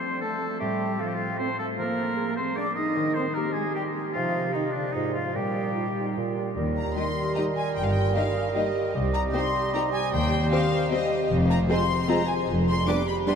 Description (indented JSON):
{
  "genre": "cinematic, playful, whimsical film cue",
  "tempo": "152 BPM",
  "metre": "3/4",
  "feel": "straight",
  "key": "Eb major",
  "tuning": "A4 = 439 Hz",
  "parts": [
    { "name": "mellow hollow concert flute", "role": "second line", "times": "0.0-13.4 s", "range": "D5 to Eb6", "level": "-33 LUFS", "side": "left 4 dB", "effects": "none" },
    { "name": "warm oboe", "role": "second line", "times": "0.0-13.4 s", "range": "D4 to Eb5", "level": "-33 LUFS", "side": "right 1 dB", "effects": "none" },
    { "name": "mellow French horn section", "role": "sustained chords", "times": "0.0-13.4 s", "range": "D3 to Eb4", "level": "-32 LUFS", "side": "right 1 dB", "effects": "none" },
    { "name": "concert harp", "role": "arpeggios", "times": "0.0-13.4 s", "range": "G2 to Eb5", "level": "-31 LUFS", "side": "left 1 dB", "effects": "none" },
    { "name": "dark clarinet", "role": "second line", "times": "0.2-13.4 s", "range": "D4 to Bb4", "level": "-35 LUFS", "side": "right 4 dB", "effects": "none" },
    { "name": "dark bassoon", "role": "accompaniment", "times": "0.6-13.4 s", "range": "Ab2 to A3", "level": "-33 LUFS", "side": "right 5 dB", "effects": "none" },
    { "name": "warm studio cello section", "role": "bass", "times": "6.6-12.8 s", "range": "C2 to G2", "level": "-29 LUFS", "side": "equal", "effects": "none" },
    { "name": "warm studio double bass section", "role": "bass", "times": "6.6-12.8 s", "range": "F1 to Eb2", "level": "-30 LUFS", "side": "equal", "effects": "none" },
    { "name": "warm studio violin section", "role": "melody", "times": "6.8-13.4 s", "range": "Eb5 to D6", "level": "-32 LUFS", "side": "left 2 dB", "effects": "none" },
    { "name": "warm studio violin section", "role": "second line", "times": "7.0-13.4 s", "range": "G4 to Eb5", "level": "-35 LUFS", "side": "left 3 dB", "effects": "none" },
    { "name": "warm studio viola section", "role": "accompaniment", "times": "7.0-13.4 s", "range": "G3 to G4", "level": "-35 LUFS", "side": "left 5 dB", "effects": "none" }
  ],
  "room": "wet huge ambient reverb, RT60 7.9 s",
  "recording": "in a vast, echoing space",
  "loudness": "-23 LUFS",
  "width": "side -7 dB against mid",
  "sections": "0.0-6.6 A section; 6.6-13.4 B section",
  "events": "none",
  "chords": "0.0 F; 0.6 F/A; 1.8 Bb7/F; 3.0 Eb; 4.1 Cm; 4.9 Fm7/Ab; 5.4 Eb/Bb; 6.2 Bb; 6.6 Eb; 7.8 Eb/G; 8.9 Cm; 10.1 Cm/Eb; 11.3 Fm; 12.5 G7/F"
}